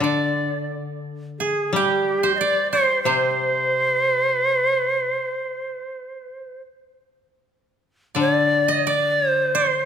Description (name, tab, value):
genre	japanese traditional, Japanese chamber music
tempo	76-92 BPM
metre	4/4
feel	rubato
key	unclear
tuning	A4 = 439 Hz
part	bright reedy shakuhachi	melody	0.0-9.9 s	G4 to Eb5	-20 LUFS	equal	none
part	koto	second line	0.0-9.9 s	G4 to G5	-25 LUFS	right 7 dB	none
part	koto	accompaniment	0.0-9.9 s	C3 to G3	-26 LUFS	left 3 dB	none
room	moderate concert hall reverb, RT60 2.0 s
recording	minimal, uncompressed stereo recording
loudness	-18 LUFS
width	side -8 dB against mid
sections	0.0-7.4 A section; 7.4-9.9 B section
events	none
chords	none